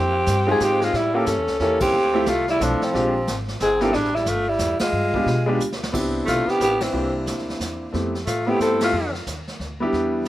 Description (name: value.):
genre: jazz, small-group swing and bop.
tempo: 180 BPM.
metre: 3/4.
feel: swing 62% on 8ths.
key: unclear.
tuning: A4 = 440 Hz.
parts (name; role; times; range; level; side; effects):
growling alto saxophone; melody; 0.0-9.1 s; C4 to A4; -21 LUFS; left 1 dB; slapback echo.
clear tenor saxophone; second line; 0.0-9.1 s; E3 to C#4; -27 LUFS; right 2 dB; slapback echo.
upright bass; bass; 0.0-10.3 s; G1 to B2; -28 LUFS; equal; none.
vintage brush drum kit; drums; 0.3-10.3 s; brushed snare drum, crash cymbal, hi-hat, kick drum, ride cymbal, snare drum; -31 LUFS; right 1 dB; none.
clear grand piano; accompaniment; 0.5-10.2 s; G3 to Bb4; -24 LUFS; equal; none.
room: little or no reverb.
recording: none.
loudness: -19 LUFS.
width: side -14 dB against mid.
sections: 0.0-5.9 A section; 5.9-10.3 B section.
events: band accent 1.8, 4.8, 6.8, 8.8; drum fill 5.6-5.9.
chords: 0.0 Fm9; 0.9 A7b9; 1.9 Dm11; 2.9 Bb13; 3.9 A5; 4.9 G7b9; 5.9 Am11; 6.9 C9; 7.9 Fmaj9#11; 8.9 Fsus2.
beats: 0.27 0.61 | 0.94 1.27 1.60 | 1.94 2.27 2.60 | 2.94 3.27 3.60 | 3.93 4.27 4.60 | 4.93 5.26 5.60 | 5.93 6.26 6.60 | 6.93 7.26 7.60 | 7.93 8.26 8.60 | 8.93 9.26 9.59 | 9.93 10.26.